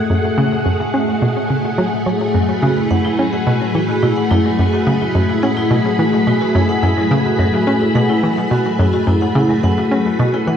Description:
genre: ambient, sequencer-driven space music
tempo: 107 BPM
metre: 4/4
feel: straight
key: F# minor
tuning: A4 = 440 Hz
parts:
  - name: string machine, full ensemble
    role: sustained chords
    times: 0.0-10.6 s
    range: A3 to B5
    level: -17 LUFS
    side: left 1 dB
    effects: ensemble chorus
  - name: hollow square pluck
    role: riff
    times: 0.0-10.6 s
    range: F#2 to C#4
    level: -18 LUFS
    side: equal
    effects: chorus, ping-pong delay
  - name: vibraphone with medium hard mallets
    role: arpeggios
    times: 2.3-10.6 s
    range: F#3 to F#5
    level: -20 LUFS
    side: equal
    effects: auto-pan, ping-pong delay
room: wet plate reverb, RT60 2.7 s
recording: worn, warbling old tape, cassette tape, warbly pitch drift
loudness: -13 LUFS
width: side -8 dB against mid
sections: 0.0-10.6 A section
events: none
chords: 0.0 F#madd9

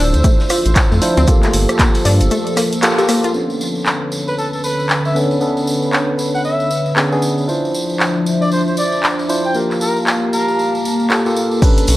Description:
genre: deep house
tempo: 116 BPM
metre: 4/4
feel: swing 60% on 16ths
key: unclear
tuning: A4 = 440 Hz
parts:
  - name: hollow soft pad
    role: sustained chords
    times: 0.0-12.0 s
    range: D3 to E6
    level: -22 LUFS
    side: equal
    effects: chorus, sidechain pumping
  - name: analog pluck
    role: arpeggios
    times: 0.0-3.3 s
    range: A3 to G4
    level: -21 LUFS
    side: left 2 dB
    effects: chorus, sidechain pumping, analog delay
  - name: barky tine electric piano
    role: stabs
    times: 0.0-12.0 s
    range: Bb3 to C5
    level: -19 LUFS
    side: equal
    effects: overdrive, sidechain pumping, low-pass filter, analog delay
  - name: round analog bass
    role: bass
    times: 0.0-2.3, 11.9-12.0 s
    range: D1 to G2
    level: -13 LUFS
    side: equal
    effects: sidechain pumping
  - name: deep dark ambient pad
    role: texture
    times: 0.0-12.0 s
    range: D3 to E6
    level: -26 LUFS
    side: equal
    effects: chorus, built-in reverb, sidechain pumping
  - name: deep house drum kit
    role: drums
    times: 0.1-12.0 s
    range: crash cymbal, handclaps, hi-hat, rim click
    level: -19 LUFS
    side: equal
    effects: none
  - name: tambourine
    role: percussion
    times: 0.1-12.0 s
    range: none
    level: -28 LUFS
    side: right 1 dB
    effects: none
  - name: electronic kick drum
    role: drums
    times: 0.2-1.9, 11.6-11.7 s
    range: none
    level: -13 LUFS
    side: equal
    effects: none
  - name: warm soul drum kit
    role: drums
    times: 0.2-3.2, 11.6-12.0 s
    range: hi-hat, shaker, snare drum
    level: -29 LUFS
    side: equal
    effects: high-pass filter on hats, high-pass filter on snare, high-pass filter on perc, high-pass filter on room
  - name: trumpet with bucket mute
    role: melody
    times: 4.3-10.7 s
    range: A4 to G5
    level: -22 LUFS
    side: left 1 dB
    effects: analog delay
room: light reverb, small room ambience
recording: dry, gritty hardware recording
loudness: -13 LUFS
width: side -16 dB against mid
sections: 0.0-3.3 A section; 3.3-11.6 B section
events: break 2.3-3.3; band accent 2.8; filter sweep on tine electric piano 3.3-11.6; filter sweep on analog synth pad 3.3-11.6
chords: 0.0 Dm9; 1.3 Gm9; 3.3 Bm9; 7.5 Dm9; 9.6 Gm9

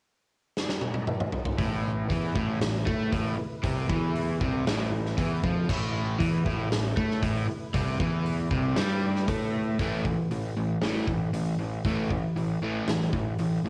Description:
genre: hard rock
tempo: 117 BPM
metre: 4/4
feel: straight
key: A minor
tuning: A4 = 440 Hz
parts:
  - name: huge arena drum kit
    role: drums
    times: 0.6-13.5 s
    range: crash cymbal, hi-hat, kick drum, snare drum, toms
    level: -33 LUFS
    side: equal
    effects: cassette tape
  - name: percussive tonewheel organ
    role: sustained chords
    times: 1.6-9.7 s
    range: A3 to B4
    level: -44 LUFS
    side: equal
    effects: none
  - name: overdriven semi-hollow guitar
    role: riff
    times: 1.6-13.7 s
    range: A2 to A3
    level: -32 LUFS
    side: equal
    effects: cassette tape
  - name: overdriven semi-hollow guitar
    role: riff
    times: 1.6-13.7 s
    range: A2 to A3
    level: -37 LUFS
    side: equal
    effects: none
  - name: fuzz picked electric bass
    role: bass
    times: 1.6-13.7 s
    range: A1 to A2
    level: -34 LUFS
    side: equal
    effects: overdrive
room: light reverb, small room ambience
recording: home recording on cassette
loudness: -28 LUFS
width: mono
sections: 0.0-1.6 A section; 1.6-9.8 B section; 9.8-13.7 C section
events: drum fill 0.6-1.6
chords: 0.0 N.C.; 1.6 Am; 9.8 A5

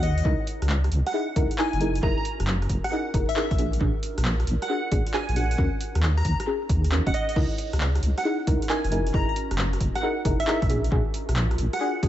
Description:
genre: UK garage, two-step garage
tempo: 135 BPM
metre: 4/4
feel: swing 67% on 16ths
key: unclear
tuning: A4 = 440 Hz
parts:
  - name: glassy wavetable pluck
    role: melody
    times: 0.0-11.9 s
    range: D#5 to A#5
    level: -31 LUFS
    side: equal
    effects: chorus, analog delay
  - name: deep soft wobble bass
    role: bass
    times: 0.0-12.1 s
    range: D#1 to D#2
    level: -24 LUFS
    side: equal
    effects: chorus, tube saturation
  - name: punchy analog drum machine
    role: drums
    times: 0.0-12.1 s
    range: crash cymbal, handclaps, hi-hat, rim click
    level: -33 LUFS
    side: equal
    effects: analog delay
  - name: warbly tape-like pad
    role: texture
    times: 0.1-12.1 s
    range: C#4 to D5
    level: -39 LUFS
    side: right 2 dB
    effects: chorus, built-in reverb, phaser, sidechain pumping
  - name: deep mellow chord stab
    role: stabs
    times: 0.2-12.1 s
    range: C#4 to D#5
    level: -29 LUFS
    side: equal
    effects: chorus, dub echo
  - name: electronic kick drum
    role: drums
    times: 0.2-12.1 s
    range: none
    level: -27 LUFS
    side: equal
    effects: none
room: light reverb, digital ambience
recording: echo-heavy mix, vinyl crackle, nothing above 7.9 kHz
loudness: -22 LUFS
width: side -12 dB against mid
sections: 0.0-12.1 A section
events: fade-in on ambient pad 0.0-12.1; filter sweep on synth stab 0.0-12.1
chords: 0.3 F#13; 3.6 A#7b13; 5.6 D#m7; 7.4 F#13; 10.7 A#7b13

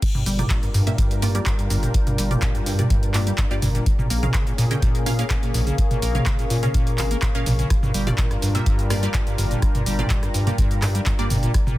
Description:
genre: acid house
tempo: 125 BPM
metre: 4/4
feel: straight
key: unclear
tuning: A4 = 440 Hz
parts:
  - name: warm analog pad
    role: sustained chords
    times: 0.3-11.8 s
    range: G3 to Bb4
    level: -32 LUFS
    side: equal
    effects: chorus, sidechain pumping
  - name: booming analog drum machine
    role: drums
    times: 0.0-11.8 s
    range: crash cymbal, handclaps, hi-hat, rim click, shaker, toms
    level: -27 LUFS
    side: right 1 dB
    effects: none
  - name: electronic kick drum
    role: drums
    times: 0.0-11.6 s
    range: none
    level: -22 LUFS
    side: equal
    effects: none
  - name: deep dark ambient pad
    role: texture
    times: 0.0-11.8 s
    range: Bb4 to Db6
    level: -34 LUFS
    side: left 3 dB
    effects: chorus, built-in reverb, sidechain pumping
  - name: acid bass, square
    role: riff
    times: 0.1-11.8 s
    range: G2 to Bb3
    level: -25 LUFS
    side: equal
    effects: overdrive, wide subtle chorus, sidechain pumping
  - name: saturated sub bass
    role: bass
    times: 0.3-11.5 s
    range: G1 to Bb2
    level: -23 LUFS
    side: equal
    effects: sidechain pumping
  - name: filtered dub chord stab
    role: stabs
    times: 0.4-11.3 s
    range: Bb3 to G5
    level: -32 LUFS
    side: right 2 dB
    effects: phaser, dub echo
room: little or no reverb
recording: dense, heavily limited modern master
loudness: -18 LUFS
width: side -16 dB against mid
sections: 0.0-11.8 A section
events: drop 0.0-11.8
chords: 0.0 Gm7; 3.9 Bbm7; 7.7 Gm7

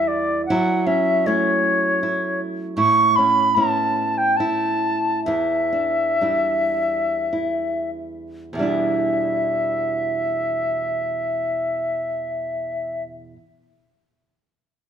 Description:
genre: celtic folk, Celtic slow air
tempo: 47-79 BPM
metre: 3/4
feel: rubato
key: E dorian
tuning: A4 = 440 Hz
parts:
  - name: bright reedy baroque flute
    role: melody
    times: 0.0-13.0 s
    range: C#5 to C#6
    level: -20 LUFS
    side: equal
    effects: none
  - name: nylon-string guitar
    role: accompaniment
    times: 0.0-13.4 s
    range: E2 to E4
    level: -25 LUFS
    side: right 2 dB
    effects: none
room: moderate recital hall reverb, RT60 1.6 s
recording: minimal, uncompressed stereo recording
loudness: -19 LUFS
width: side -8 dB against mid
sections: 0.0-8.6 A section; 8.6-12.3 B section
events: slowing down 2.8-8.6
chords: 0.5 F#m7; 2.8 Aadd9; 5.2 Em7

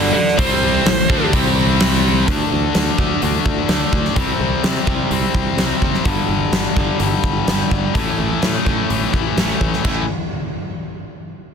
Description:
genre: hard rock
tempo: 127 BPM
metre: 4/4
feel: straight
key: A minor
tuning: A4 = 442 Hz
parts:
  - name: smooth overdriven lead guitar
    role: melody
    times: 0.0-1.3 s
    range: A4 to D5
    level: -19 LUFS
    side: right 4 dB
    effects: plate reverb, analog delay
  - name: high-gain distorted guitar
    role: riff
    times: 0.0-2.3 s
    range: G2 to D4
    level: -22 LUFS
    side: right 1 dB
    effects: distortion
  - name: overdriven semi-hollow guitar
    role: riff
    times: 0.0-10.0 s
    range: G2 to D4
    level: -24 LUFS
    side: right 13 dB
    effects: none
  - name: tight distorted guitar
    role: riff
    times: 0.0-10.0 s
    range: G2 to D4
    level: -21 LUFS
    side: left 12 dB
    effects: distortion
  - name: modern bright fingered electric bass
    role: bass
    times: 0.0-10.1 s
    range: F#1 to C3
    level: -22 LUFS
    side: equal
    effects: none
  - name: huge arena drum kit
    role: drums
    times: 0.3-10.0 s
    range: crash cymbal, hi-hat, kick drum, snare drum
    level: -19 LUFS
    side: equal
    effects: none
room: light reverb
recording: dense, heavily limited modern master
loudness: -15 LUFS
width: side -6 dB against mid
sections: 0.0-2.3 A section; 2.3-9.8 B section; 9.8-11.5 C section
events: lead electric guitar solo 0.0-2.3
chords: 0.2 Asus4; 0.4 C5; 0.9 Am; 1.3 C5; 2.3 D5; 4.2 C5; 6.0 G5; 7.9 A5

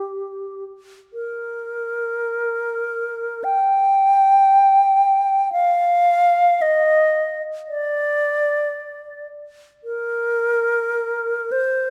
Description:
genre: classical, free, expressive piece for unaccompanied alto flute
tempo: 46-59 BPM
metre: 4/4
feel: rubato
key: unclear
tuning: A4 = 439 Hz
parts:
  - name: bright alto flute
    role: solo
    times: 0.0-11.9 s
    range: G4 to G5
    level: -20 LUFS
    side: equal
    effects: none
room: moderate concert hall reverb, RT60 2.1 s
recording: none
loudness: -19 LUFS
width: mono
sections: 0.0-11.9 A section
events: none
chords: none

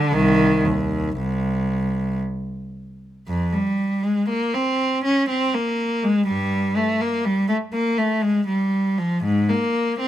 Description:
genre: classical, baroque-style suite movement for unaccompanied cello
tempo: 56-62 BPM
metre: 3/4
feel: rubato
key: C minor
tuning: A4 = 439 Hz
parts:
  - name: rich cello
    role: solo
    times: 0.0-10.1 s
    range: C2 to Db4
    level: -19 LUFS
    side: equal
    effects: none
room: light reverb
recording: minimal, uncompressed stereo recording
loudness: -19 LUFS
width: side -12 dB against mid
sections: 0.0-3.3 A section; 3.3-10.1 A section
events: none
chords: none

